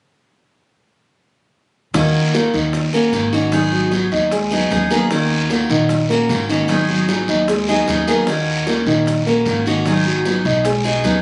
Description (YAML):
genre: latin, Cuban son and guajira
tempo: 152 BPM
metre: 4/4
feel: straight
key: Eb minor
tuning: A4 = 439 Hz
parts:
  - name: picked steel-string acoustic guitar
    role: accompaniment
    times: 1.9-11.2 s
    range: Eb3 to Ab4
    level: -22 LUFS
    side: equal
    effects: none
  - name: dark grand piano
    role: arpeggios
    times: 1.9-11.2 s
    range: Eb3 to Eb5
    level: -20 LUFS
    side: equal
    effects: none
  - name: upright bass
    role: bass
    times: 1.9-11.2 s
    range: Ab1 to Eb2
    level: -28 LUFS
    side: equal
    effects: none
  - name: bongos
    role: percussion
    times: 1.9-11.2 s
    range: none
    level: -32 LUFS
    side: equal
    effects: none
  - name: guiro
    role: percussion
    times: 1.9-11.2 s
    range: none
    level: -28 LUFS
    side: equal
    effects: none
room: light reverb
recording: recorded on a phone in the room, studio ambience, compression, nothing above 11.0 kHz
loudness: -17 LUFS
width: mono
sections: 1.9-11.2 A section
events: none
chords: 1.9 Ebm7; 3.5 Abm7; 5.1 Ebm7; 6.7 Abm7; 8.3 Ebm7; 9.9 Abm7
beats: | 1.95 2.34 2.74 3.13 | 3.53 3.92 4.32 4.72 | 5.11 5.51 5.90 6.30 | 6.69 7.09 7.49 7.88 | 8.28 8.67 9.07 9.46 | 9.86 10.26 10.65 11.05